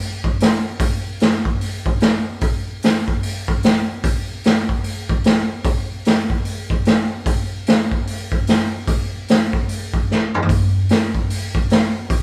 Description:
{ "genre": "rock", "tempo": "149 BPM", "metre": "4/4", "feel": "swing 62% on 8ths", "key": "none", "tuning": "none", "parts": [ { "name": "raw garage drum kit", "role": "drums", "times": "0.2-12.2 s", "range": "hi-hat, kick drum, snare drum, toms", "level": "-19 LUFS", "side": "equal", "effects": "none" } ], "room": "light reverb", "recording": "band playing live in one room", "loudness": "-19 LUFS", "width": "mono", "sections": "0.0-12.2 A section", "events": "drum fill 10.1-10.5", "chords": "none" }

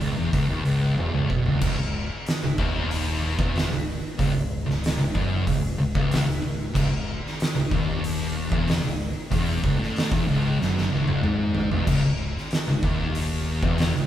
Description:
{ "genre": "stoner and doom metal", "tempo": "94 BPM", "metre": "4/4", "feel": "straight", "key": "C# minor", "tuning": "A4 = 442 Hz", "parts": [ { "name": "thick fuzz guitar", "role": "riff", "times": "0.0-14.1 s", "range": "C#2 to B2", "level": "-24 LUFS", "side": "equal", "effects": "distortion" }, { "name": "growling fingered electric bass", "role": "bass", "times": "0.0-14.1 s", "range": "C#1 to B1", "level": "-30 LUFS", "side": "equal", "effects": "overdrive" }, { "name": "oversized low-tuned drum kit", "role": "drums", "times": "0.0-13.9 s", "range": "crash cymbal, hi-hat, kick drum, snare drum, toms", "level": "-26 LUFS", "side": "equal", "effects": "none" } ], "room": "moderate studio reverb, RT60 0.6 s", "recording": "band playing live in one room", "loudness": "-22 LUFS", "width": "side -11 dB against mid", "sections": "0.0-1.6 A section; 1.6-11.9 B section; 11.9-14.1 B section", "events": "drum fill 1.0-1.6, 10.6-11.9", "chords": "0.0 C#m" }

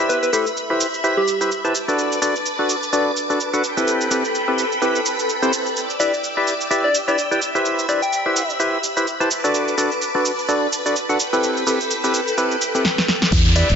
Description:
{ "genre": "piano house", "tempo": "127 BPM", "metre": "4/4", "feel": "swing 57% on 16ths", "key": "unclear", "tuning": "A4 = 439 Hz", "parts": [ { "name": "string machine, violins", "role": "sustained chords", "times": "0.0-13.8 s", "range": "A4 to E6", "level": "-24 LUFS", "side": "equal", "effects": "ensemble chorus, sidechain pumping" }, { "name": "percussive organ stab", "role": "riff", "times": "0.0-13.7 s", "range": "C4 to A5", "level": "-20 LUFS", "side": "equal", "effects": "chorus, sidechain pumping, digital delay" }, { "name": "soft struck synth lead", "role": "melody", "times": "0.1-1.5, 6.0-8.5, 13.6-13.7 s", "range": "G4 to G5", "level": "-23 LUFS", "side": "left 1 dB", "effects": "chorus, digital delay" }, { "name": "house drum kit", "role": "drums", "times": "0.1-13.8 s", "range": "crash cymbal, hi-hat, shaker, snare drum", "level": "-24 LUFS", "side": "right 2 dB", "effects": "none" }, { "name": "fingered electric bass with an envelope filter", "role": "bass", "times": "13.3-13.8 s", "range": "E1 to E2", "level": "-16 LUFS", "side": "equal", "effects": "sidechain pumping" }, { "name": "electronic kick drum", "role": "drums", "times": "13.3-13.4 s", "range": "none", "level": "-18 LUFS", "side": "equal", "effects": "none" }, { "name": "downlifter", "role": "sound effects", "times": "13.3-13.8 s", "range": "none", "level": "-20 LUFS", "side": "equal", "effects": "none" } ], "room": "moderate lush hall reverb, RT60 2.0 s", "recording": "nothing above 7.8 kHz", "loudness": "-17 LUFS", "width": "side -7 dB against mid", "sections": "0.0-13.3 A section", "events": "drum fill 12.8-13.3", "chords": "0.0 Cmaj7; 1.7 Bm7; 3.6 Am9; 5.8 Em7; 7.4 Cmaj7; 9.3 Bm7; 11.2 Am9" }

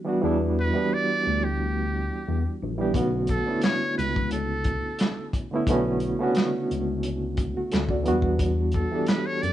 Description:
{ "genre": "R&B, neo-soul", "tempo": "88 BPM", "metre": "4/4", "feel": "swing 53% on 16ths", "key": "B minor", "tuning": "A4 = 436 Hz", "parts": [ { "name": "barky reed electric piano", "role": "accompaniment", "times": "0.0-9.5 s", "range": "C#3 to D5", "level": "-26 LUFS", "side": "right 1 dB", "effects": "overdrive, fast tremolo" }, { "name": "overdriven tine electric piano", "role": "bass", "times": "0.2-9.5 s", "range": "A#1 to F#2", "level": "-28 LUFS", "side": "left 1 dB", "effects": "phaser" }, { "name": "trumpet with metal mute", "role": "melody", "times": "0.6-9.5 s", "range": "G4 to D5", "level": "-28 LUFS", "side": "right 1 dB", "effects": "none" }, { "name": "warm soul drum kit", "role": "drums", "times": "2.9-9.5 s", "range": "handclaps, hi-hat, kick drum, snare drum", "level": "-27 LUFS", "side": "equal", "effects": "none" } ], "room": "light reverb", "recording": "band playing live in one room, nothing above 10.3 kHz", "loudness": "-23 LUFS", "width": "side -12 dB against mid", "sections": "0.0-9.5 A section", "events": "none", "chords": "0.0 Em9; 2.9 Bm9; 8.1 Em9" }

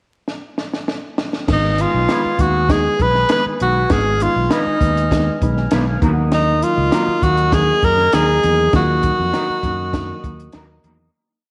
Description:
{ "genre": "uptempo 1960s-style soul", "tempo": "99 BPM", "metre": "4/4", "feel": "straight", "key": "G# dorian", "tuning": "A4 = 437 Hz", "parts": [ { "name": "compact cocktail drum kit", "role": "drums", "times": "0.3-11.0 s", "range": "crash cymbal, hi-hat, kick drum, snare drum", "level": "-24 LUFS", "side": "equal", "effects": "none" }, { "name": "clear tenor saxophone", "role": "melody", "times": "1.5-10.8 s", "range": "D#4 to B4", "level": "-19 LUFS", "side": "equal", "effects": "none" }, { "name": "reed electric piano", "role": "accompaniment", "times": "1.5-11.1 s", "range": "D#3 to B5", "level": "-26 LUFS", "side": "equal", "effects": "fast tremolo" }, { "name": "mellow tonewheel organ", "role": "sustained chords", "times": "1.5-11.1 s", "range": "A#4 to E#6", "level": "-32 LUFS", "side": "equal", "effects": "fast rotary speaker" }, { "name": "fingered electric bass", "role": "bass", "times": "1.5-11.1 s", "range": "G#1 to F#2", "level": "-23 LUFS", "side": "equal", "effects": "none" }, { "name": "electric guitar through a small old amp", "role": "stabs", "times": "2.1-10.9 s", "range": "A#3 to B4", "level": "-30 LUFS", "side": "equal", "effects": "analog chorus" } ], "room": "moderate echo chamber reverb, RT60 2.1 s", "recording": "vinyl crackle", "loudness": "-17 LUFS", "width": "mono", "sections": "0.0-1.5 pickup bar; 1.5-11.1 verse", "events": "drum fill 0.3-1.5; reed electric piano fill 5.1-6.3; fade-out 8.7-11.1", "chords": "0.0 N.C.; 1.5 G#m; 6.0 D#m" }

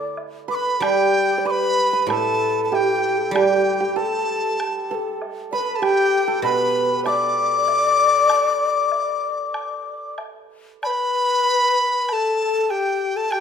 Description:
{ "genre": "chinese traditional, Chinese chamber ensemble", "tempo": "96 BPM", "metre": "4/4", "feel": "rubato", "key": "unclear", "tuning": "A4 = 439 Hz", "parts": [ { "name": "dizi", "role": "melody", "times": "0.0-13.4 s", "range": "G5 to D6", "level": "-21 LUFS", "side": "left 2 dB", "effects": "none" }, { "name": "breathy xiao", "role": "second line", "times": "0.0-13.4 s", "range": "G4 to E5", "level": "-24 LUFS", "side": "left 5 dB", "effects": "none" }, { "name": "hammered dulcimer", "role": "second line", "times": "0.0-10.1 s", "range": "G4 to D5", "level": "-25 LUFS", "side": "right 8 dB", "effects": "none" }, { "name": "guzheng", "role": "accompaniment", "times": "0.0-8.3 s", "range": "A2 to A4", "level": "-25 LUFS", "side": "right 6 dB", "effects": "none" }, { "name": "woodblock", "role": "percussion", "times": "0.2-13.4 s", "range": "none", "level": "-32 LUFS", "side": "right 2 dB", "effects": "none" } ], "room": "moderate recital hall reverb, RT60 1.4 s", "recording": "minimal, uncompressed stereo recording", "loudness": "-18 LUFS", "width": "side -7 dB against mid", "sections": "0.8-10.8 A section; 10.8-13.4 B section", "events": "none", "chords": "none" }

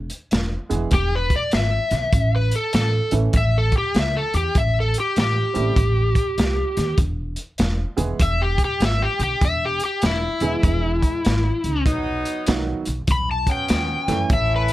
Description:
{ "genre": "electric blues shuffle", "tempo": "99 BPM", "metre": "4/4", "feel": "swing 64% on 8ths", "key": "unclear", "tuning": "A4 = 441 Hz", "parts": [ { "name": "upright bass", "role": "bass", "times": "0.0-14.7 s", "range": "E1 to F#2", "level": "-22 LUFS", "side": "equal", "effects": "none" }, { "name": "crunchy breakbeat drum kit", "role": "drums", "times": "0.1-14.7 s", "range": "hi-hat, kick drum, snare drum", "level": "-22 LUFS", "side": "equal", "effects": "none" }, { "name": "clear upright piano", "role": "accompaniment", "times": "0.7-14.3 s", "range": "D#3 to A4", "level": "-26 LUFS", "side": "right 5 dB", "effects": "none" }, { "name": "overdriven slide guitar", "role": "melody", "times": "0.9-14.7 s", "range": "E4 to B5", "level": "-22 LUFS", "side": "left 1 dB", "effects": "none" }, { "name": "warm saxophone section", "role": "stabs", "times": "11.9-14.7 s", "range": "F#3 to E4", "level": "-26 LUFS", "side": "equal", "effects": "none" } ], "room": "little or no reverb", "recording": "none", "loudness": "-18 LUFS", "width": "side -15 dB against mid", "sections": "0.0-14.7 A section", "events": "electric slide guitar solo 0.0-14.7", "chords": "0.0 E; 2.1 A; 4.6 Am7; 7.0 E; 11.9 B" }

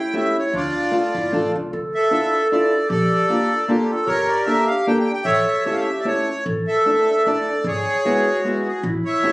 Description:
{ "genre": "musette waltz", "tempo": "152 BPM", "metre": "3/4", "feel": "swing 55% on 8ths", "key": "D harmonic minor", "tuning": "A4 = 440 Hz", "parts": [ { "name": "accordion", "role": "melody", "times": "0.0-9.3 s", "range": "F4 to G5", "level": "-20 LUFS", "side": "equal", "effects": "none" }, { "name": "mellow clarinet", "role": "second line", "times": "0.0-9.3 s", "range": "D4 to A4", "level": "-23 LUFS", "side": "right 1 dB", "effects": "none" }, { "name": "fingerpicked steel-string acoustic guitar", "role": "accompaniment", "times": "0.1-9.3 s", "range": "G#3 to A4", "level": "-21 LUFS", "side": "left 1 dB", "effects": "none" }, { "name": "upright bass", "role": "bass", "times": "0.5-9.0 s", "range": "G1 to D2", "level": "-26 LUFS", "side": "equal", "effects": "none" } ], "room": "moderate studio reverb, RT60 0.6 s", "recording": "recorded on a phone in the room, club reverb, compression", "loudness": "-17 LUFS", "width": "side -21 dB against mid", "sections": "0.0-1.7 A section; 1.7-9.3 A section", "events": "none", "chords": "0.0 A7; 0.5 Dm; 1.7 Dmadd9; 2.9 Bbmaj7; 4.1 Gmadd9; 5.3 A; 6.5 Asus4; 7.7 E/G#" }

